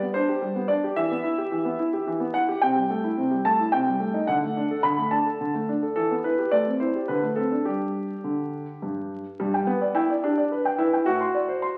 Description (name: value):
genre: classical-period piano sonatina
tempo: 108 BPM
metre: 3/4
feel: straight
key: G major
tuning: A4 = 440 Hz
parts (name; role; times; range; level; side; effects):
- warm concert grand piano; solo; 0.0-11.8 s; G2 to C6; -25 LUFS; equal; none
room: wet recital hall reverb, RT60 1.2 s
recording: very old 78 rpm record, vinyl crackle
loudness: -25 LUFS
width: mono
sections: 0.0-9.4 A section; 9.4-11.8 B section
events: none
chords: 0.0 G; 1.0 Em; 2.6 Am7/C; 3.7 Am7b5/C; 4.3 D; 6.0 Em; 6.5 Am7; 7.1 D5; 7.7 G5; 9.4 G; 11.1 D7/A